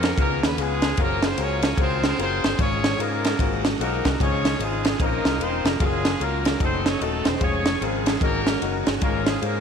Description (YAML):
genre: uptempo gospel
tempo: 150 BPM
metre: 4/4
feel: swing 63% on 8ths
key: Db major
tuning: A4 = 440 Hz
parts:
  - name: clear horn section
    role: melody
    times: 0.0-9.6 s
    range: Ab3 to Db5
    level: -27 LUFS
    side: equal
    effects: none
  - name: warm concert grand piano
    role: accompaniment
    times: 0.0-9.6 s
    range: Ab2 to Db5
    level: -28 LUFS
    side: left 13 dB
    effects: none
  - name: bright tonewheel organ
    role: sustained chords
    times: 0.0-9.6 s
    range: Db3 to C5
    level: -32 LUFS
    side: right 13 dB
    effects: slow rotary speaker, overdrive
  - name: modern bright fingered electric bass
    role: bass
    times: 0.0-9.6 s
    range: Eb1 to Ab2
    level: -28 LUFS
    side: equal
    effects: none
  - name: crisp fusion drum kit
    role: drums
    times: 0.0-9.5 s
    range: kick drum, ride cymbal, snare drum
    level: -23 LUFS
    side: right 1 dB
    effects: none
room: light reverb, studio reverb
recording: 1960s-style stereo with parts hard left and right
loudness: -20 LUFS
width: side -7 dB against mid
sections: 0.0-9.6 A section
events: none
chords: 0.2 Db7; 1.0 Gbmaj9#11; 2.6 Db/Ab; 3.4 Ab13; 4.2 Dbmaj9; 5.8 Gbmaj9; 6.6 Gbm6; 7.4 Dbmaj7/F; 8.2 Ab9sus4; 9.0 Db/Ab